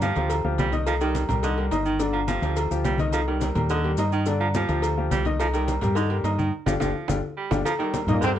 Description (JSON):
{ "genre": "latin, salsa", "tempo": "212 BPM", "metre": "4/4", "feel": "straight", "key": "C minor", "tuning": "A4 = 438 Hz", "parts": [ { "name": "clear baritone saxophone", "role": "second line", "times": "0.0-8.4 s", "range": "D3 to G3", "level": "-29 LUFS", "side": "right 5 dB", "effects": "none" }, { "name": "clear grand piano", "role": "accompaniment", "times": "0.0-8.4 s", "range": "D3 to Eb5", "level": "-28 LUFS", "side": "left 4 dB", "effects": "none" }, { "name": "deep dub fingered electric bass", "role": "bass", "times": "0.0-8.4 s", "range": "G1 to G2", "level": "-26 LUFS", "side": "right 1 dB", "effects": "none" }, { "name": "congas", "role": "percussion", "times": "0.0-8.4 s", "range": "none", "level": "-30 LUFS", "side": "left 2 dB", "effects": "none" }, { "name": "cowbell", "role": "percussion", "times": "0.0-8.4 s", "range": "none", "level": "-33 LUFS", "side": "left 7 dB", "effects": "none" }, { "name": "maracas", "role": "percussion", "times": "0.0-8.4 s", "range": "none", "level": "-44 LUFS", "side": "left 7 dB", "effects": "none" }, { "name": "timbales and agogo bells", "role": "percussion", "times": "0.0-8.4 s", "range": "none", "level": "-32 LUFS", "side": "right 6 dB", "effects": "none" }, { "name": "brilliant trombone section", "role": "melody", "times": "8.1-8.3 s", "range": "Bb2 to C4", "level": "-25 LUFS", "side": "right 2 dB", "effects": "none" } ], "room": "light reverb", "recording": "worn, warbling old tape, cassette tape, warbly pitch drift", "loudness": "-22 LUFS", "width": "side -10 dB against mid", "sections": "0.0-7.7 A section", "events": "band accent 6.5-7.7", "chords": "0.0 G5; 0.9 Cm7; 2.0 G5; 3.1 Cm7; 4.3 G5; 5.4 Cm7; 6.5 G5; 7.7 Cm7 (rootless)" }